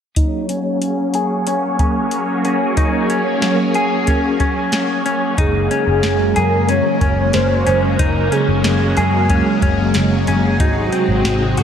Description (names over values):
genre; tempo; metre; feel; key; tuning
dream pop; 92 BPM; 4/4; straight; Gb lydian; A4 = 440 Hz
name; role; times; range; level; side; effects
string machine, violins; sustained chords; 0.2-11.6 s; C3 to Db5; -18 LUFS; equal; phaser, ensemble chorus, low-pass filter
clean electric guitar; arpeggios; 0.2-11.6 s; C4 to Ab4; -20 LUFS; left 2 dB; wide subtle chorus, low-pass filter, diffuse ambient delay
soft vintage rhythm box; drums; 0.2-11.6 s; hi-hat, kick drum, snare drum; -20 LUFS; equal; none
warm velvety synth lead; melody; 5.4-11.6 s; Gb4 to Db5; -20 LUFS; right 1 dB; chorus, diffuse ambient delay
vintage muted picked electric bass; bass; 5.4-11.6 s; Gb1 to Ab2; -19 LUFS; equal; none
room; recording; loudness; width
wet lush hall reverb, RT60 2.2 s; dreamy mix soaked in reverb; -14 LUFS; side -8 dB against mid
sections
0.2-5.4 A section; 5.4-11.6 B section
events
filter sweep 0.2-5.4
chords
0.2 Gbadd9; 10.6 Ab7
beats
| 0.17 0.82 1.47 2.12 | 2.78 3.43 4.08 4.73 | 5.38 6.04 6.69 7.34 | 7.99 8.65 9.30 9.95 | 10.60 11.26